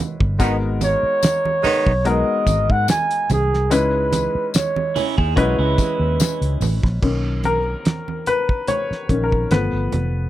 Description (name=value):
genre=lush 1970s-style soul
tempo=72 BPM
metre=4/4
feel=swing 54% on 16ths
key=B major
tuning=A4 = 439 Hz
part: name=warm baby grand piano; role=accompaniment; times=0.0-10.3 s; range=D#3 to D#5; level=-23 LUFS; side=left 4 dB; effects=none
part: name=vintage muted fingered electric bass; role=bass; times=0.2-10.3 s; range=F1 to G#2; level=-21 LUFS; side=equal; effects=none
part: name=cloth-damped thuddy drum kit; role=drums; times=0.2-10.1 s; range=crash cymbal, hi-hat, kick drum, snare drum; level=-21 LUFS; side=equal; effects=none
part: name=breathy flugelhorn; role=melody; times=0.4-6.6 s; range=G#4 to G#5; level=-20 LUFS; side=right 1 dB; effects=none
part: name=warm horn section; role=stabs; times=0.4-1.9 s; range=D#3 to D#4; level=-21 LUFS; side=right 5 dB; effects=none
part: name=congas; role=percussion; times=0.4-10.1 s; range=none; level=-27 LUFS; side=right 5 dB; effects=none
part: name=tambourine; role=percussion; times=0.4-6.8 s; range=none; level=-30 LUFS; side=left 28 dB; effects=none
part: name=electric guitar through a small old amp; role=riff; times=5.0-6.8 s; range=C#4 to G#4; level=-25 LUFS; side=right 6 dB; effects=wide subtle chorus
room=little or no reverb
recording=dry, close 1970s-style studio recording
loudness=-17 LUFS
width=side -14 dB against mid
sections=0.0-7.0 A section; 7.0-10.3 B section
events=grand piano solo 7.0-10.3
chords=0.4 G#m7; 3.7 C#m7; 7.0 Bmaj9; 9.5 G9